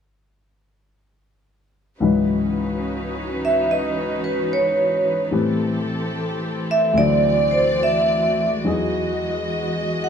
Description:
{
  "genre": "jazz ballad",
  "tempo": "72 BPM",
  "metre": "4/4",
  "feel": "swing 68% on 8ths",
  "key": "C# minor",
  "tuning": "A4 = 440 Hz",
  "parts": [
    { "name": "warm baby grand piano", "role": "accompaniment", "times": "2.0-10.1 s", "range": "C#2 to C5", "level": "-23 LUFS", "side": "left 3 dB", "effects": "none" },
    { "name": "warm studio string section", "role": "sustained chords", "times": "2.0-10.1 s", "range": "E3 to D#5", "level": "-25 LUFS", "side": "equal", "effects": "none" },
    { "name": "vibraphone with medium mallets", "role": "melody", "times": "3.4-10.1 s", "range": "B4 to F#5", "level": "-18 LUFS", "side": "right 2 dB", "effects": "plate reverb" }
  ],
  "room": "moderate large studio reverb, RT60 0.9 s",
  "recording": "dark, warm production, faint mains hum",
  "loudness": "-18 LUFS",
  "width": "side -7 dB against mid",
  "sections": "2.0-10.1 A section",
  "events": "none",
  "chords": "2.0 C#m11; 5.3 Am7; 7.0 D9; 8.7 Emaj9",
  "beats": "| 2.01 2.84 3.67 4.51 | 5.34 6.17 7.00 7.83 | 8.66 9.48"
}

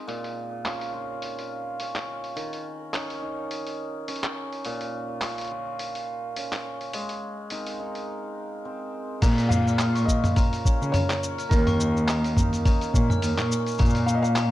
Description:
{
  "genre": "folktronica",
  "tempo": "105 BPM",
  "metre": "4/4",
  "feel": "swing 56% on 16ths",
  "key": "Bb minor",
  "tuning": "A4 = 441 Hz",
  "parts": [
    { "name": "hammered dulcimer", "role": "arpeggios", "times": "0.0-14.5 s", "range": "Bb2 to Bb4", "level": "-32 LUFS", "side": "right 1 dB", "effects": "vintage 12-bit sampler grit, digital delay" },
    { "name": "lo-fi sampler-style drum kit", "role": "drums", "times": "0.1-14.5 s", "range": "crash cymbal, handclaps, hi-hat, shaker, toms", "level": "-29 LUFS", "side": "equal", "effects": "low-pass filter on hats, low-pass filter on snare, low-pass filter on cymbals, low-pass filter on perc, low-pass filter on toms" },
    { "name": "glockenspiel with hard plastic mallets", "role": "second line", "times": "9.2-14.5 s", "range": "Bb5 to F6", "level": "-34 LUFS", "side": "left 3 dB", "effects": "digital delay" },
    { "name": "warm cello", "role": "bass", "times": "9.2-14.5 s", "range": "Eb2 to Db3", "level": "-24 LUFS", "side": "equal", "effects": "tube saturation" },
    { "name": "electronic kick drum", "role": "drums", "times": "9.2-13.9 s", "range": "none", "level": "-21 LUFS", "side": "equal", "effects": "none" },
    { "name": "felt-muted upright piano", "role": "melody", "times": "9.5-14.5 s", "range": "Bb4 to F5", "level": "-30 LUFS", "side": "left 2 dB", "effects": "vintage 12-bit sampler grit, digital delay" }
  ],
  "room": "light reverb",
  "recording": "dark, warm production",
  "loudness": "-24 LUFS",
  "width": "side -15 dB against mid",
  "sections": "0.0-9.2 A section; 9.2-14.5 B section",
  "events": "filter sweep on drum 0.0-9.2",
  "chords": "0.1 Bbm; 2.4 Eb5; 4.7 Bbm; 6.9 Abadd9; 9.2 Bbm; 11.5 Eb5; 13.8 Bbm",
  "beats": "| 0.09 0.66 1.23 1.80 | 2.37 2.94 3.51 4.09 | 4.66 5.23 5.80 6.37 | 6.94 7.51 8.09 8.66 | 9.23 9.80 10.37 10.94 | 11.51 12.09 12.66 13.23 | 13.80 14.37"
}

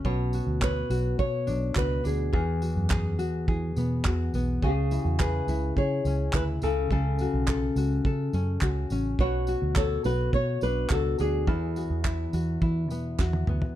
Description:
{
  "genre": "acoustic pop",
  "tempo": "105 BPM",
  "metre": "4/4",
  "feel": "straight",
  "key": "unclear",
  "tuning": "A4 = 440 Hz",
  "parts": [
    { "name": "nylon-string guitar", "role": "accompaniment", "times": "0.0-13.8 s", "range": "E2 to C#5", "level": "-30 LUFS", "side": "left 2 dB", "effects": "none" },
    { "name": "vintage muted fingered electric bass", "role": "bass", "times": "0.0-13.6 s", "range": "A1 to E3", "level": "-28 LUFS", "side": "right 1 dB", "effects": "none" },
    { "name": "cloth-damped thuddy drum kit", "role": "drums", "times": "0.0-13.8 s", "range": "handclaps, kick drum, snare drum, tambourine, toms", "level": "-28 LUFS", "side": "right 1 dB", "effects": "none" },
    { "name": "flamenco guitar", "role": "melody", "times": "0.1-13.4 s", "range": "F#4 to C#5", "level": "-31 LUFS", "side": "left 1 dB", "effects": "none" },
    { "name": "group handclap", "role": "percussion", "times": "0.6-13.3 s", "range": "none", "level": "-39 LUFS", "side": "right 8 dB", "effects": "none" }
  ],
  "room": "light reverb",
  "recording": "dark, warm production",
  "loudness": "-24 LUFS",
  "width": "side -12 dB against mid",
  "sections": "0.0-13.8 A section",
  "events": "drum fill 13.2-13.8",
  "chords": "0.0 Bmadd9; 2.3 Eadd9; 4.6 C#m; 6.6 F#m; 9.2 Bmadd9; 11.5 Eadd9",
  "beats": "| 0.05 0.62 1.19 1.76 | 2.33 2.91 3.48 4.05 | 4.62 5.19 5.76 6.33 | 6.91 7.48 8.05 8.62 | 9.19 9.76 10.33 10.90 | 11.48 12.05 12.62 13.19"
}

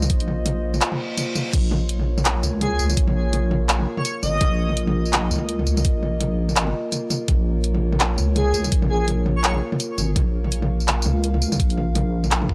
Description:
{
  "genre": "half-time drum and bass",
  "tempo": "167 BPM",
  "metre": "4/4",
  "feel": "swing 58% on 16ths, half-time",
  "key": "Bb minor",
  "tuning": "A4 = 439 Hz",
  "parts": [
    { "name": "dark analog pad", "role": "sustained chords", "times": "0.0-12.5 s", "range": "Bb3 to F5", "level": "-31 LUFS", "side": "equal", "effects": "chorus, sidechain pumping" },
    { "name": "deep soft wobble bass", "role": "bass", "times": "0.0-12.5 s", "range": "Ab1 to Db2", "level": "-24 LUFS", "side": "equal", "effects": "chorus" },
    { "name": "drum and bass drum kit", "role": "drums", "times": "0.0-12.5 s", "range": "crash cymbal, handclaps, hi-hat, tambourine, toms", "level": "-26 LUFS", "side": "equal", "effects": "none" },
    { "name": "electronic kick drum", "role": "drums", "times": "0.1-12.5 s", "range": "none", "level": "-23 LUFS", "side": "equal", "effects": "none" },
    { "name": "reverse cymbal", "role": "sound effects", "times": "0.9-1.5 s", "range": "none", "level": "-34 LUFS", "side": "equal", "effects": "none" },
    { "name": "airy dreamy lead", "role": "melody", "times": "2.6-4.7, 8.4-9.5 s", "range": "Ab4 to Eb5", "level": "-30 LUFS", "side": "equal", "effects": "chorus, tape echo" }
  ],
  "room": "little or no reverb",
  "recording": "dry, gritty hardware recording, transformer saturation, cassette tape",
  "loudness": "-21 LUFS",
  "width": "mono",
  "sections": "0.0-12.5 A section",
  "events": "reverse cymbal 0.9-1.5",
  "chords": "0.0 Bbmadd9",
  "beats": "| 0.10 0.46 0.82 1.18 | 1.53 1.89 2.25 2.61 | 2.97 3.33 3.69 4.05 | 4.41 4.77 5.13 5.49 | 5.85 6.21 6.57 6.92 | 7.28 7.64 8.00 8.36 | 8.72 9.08 9.44 9.80 | 10.16 10.52 10.88 11.23 | 11.60 11.95 12.31"
}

